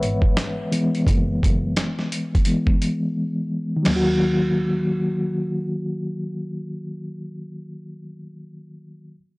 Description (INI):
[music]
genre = lo-fi hip hop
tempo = 86 BPM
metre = 4/4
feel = swing 62% on 16ths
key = Eb phrygian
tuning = A4 = 438 Hz
[part]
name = reed electric piano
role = accompaniment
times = 0.0-9.2 s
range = Eb3 to Gb5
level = -23 LUFS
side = left 1 dB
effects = fast tremolo, cassette tape, low-pass filter
[part]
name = muted double bass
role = bass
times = 0.0-7.4 s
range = Gb1 to Eb2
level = -27 LUFS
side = equal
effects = none
[part]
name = dusty soul sampler-style drum kit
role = drums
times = 0.0-4.1 s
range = crash cymbal, hi-hat, kick drum, snare drum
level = -22 LUFS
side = equal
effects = none
[sound]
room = little or no reverb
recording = dry, gritty hardware recording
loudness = -20 LUFS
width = side -25 dB against mid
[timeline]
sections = 0.0-3.8 A section; 3.8-6.6 B section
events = reed electric piano solo 0.0-3.8; break 3.2-3.8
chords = 0.0 Gb9sus4; 3.8 Ebm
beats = 0.36 | 1.06 1.76 2.45 3.15 | 3.85 4.55 5.24 5.94